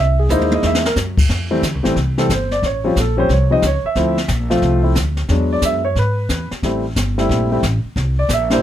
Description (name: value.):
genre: jazz piano trio.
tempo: 180 BPM.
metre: 4/4.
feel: swing 64% on 8ths.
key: F major.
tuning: A4 = 439 Hz.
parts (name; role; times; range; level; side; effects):
warm grand piano; melody; 0.0-8.6 s; E3 to E5; -17 LUFS; equal; none.
upright bass; bass; 0.0-8.6 s; G1 to G#2; -18 LUFS; equal; none.
jazz brush drum kit; drums; 0.3-8.6 s; brushed snare drum, crash cymbal, hi-hat, kick drum, snare drum, toms; -21 LUFS; left 1 dB; none.
room: little or no reverb.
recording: close, detailed microphones.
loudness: -15 LUFS.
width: side -11 dB against mid.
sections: 0.0-1.3 A section; 1.3-8.6 B section.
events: drum fill 0.3-1.0; grand piano solo 1.3-8.6.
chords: 0.0 C7alt; 1.3 Fmaj9; 2.6 A7alt; 4.0 Dm9; 5.3 E7; 6.6 Am7; 8.0 C7.